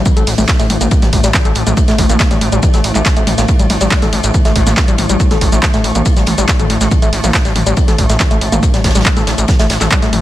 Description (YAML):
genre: driving peak-time techno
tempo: 140 BPM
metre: 4/4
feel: straight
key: unclear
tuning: A4 = 435 Hz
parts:
  - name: gritty driven synth bass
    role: bass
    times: 0.0-10.2 s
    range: A1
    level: -16 LUFS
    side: equal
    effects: sidechain pumping
  - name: swarming drone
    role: drone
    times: 0.0-10.2 s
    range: A2 to A3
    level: -20 LUFS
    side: left 1 dB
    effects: built-in reverb, sidechain pumping
  - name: electronic kick drum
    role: drums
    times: 0.1-10.0 s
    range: none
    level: -13 LUFS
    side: equal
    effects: none
  - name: loose indie drum kit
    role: drums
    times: 0.1-10.2 s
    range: hi-hat, ride cymbal, snare drum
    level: -26 LUFS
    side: left 1 dB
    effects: high-pass filter on cymbals, high-pass filter on hats, high-pass filter on snare, high-pass filter on room
  - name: punchy analog drum machine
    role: drums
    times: 0.1-10.2 s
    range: handclaps, hi-hat, shaker, toms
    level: -17 LUFS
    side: equal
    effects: none
  - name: woody wave-folded pluck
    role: riff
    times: 0.2-10.1 s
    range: G3 to A4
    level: -19 LUFS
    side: left 1 dB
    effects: chorus, sidechain pumping, digital delay
room: little or no reverb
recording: none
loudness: -10 LUFS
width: side -14 dB against mid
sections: 0.0-10.2 A section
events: none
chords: none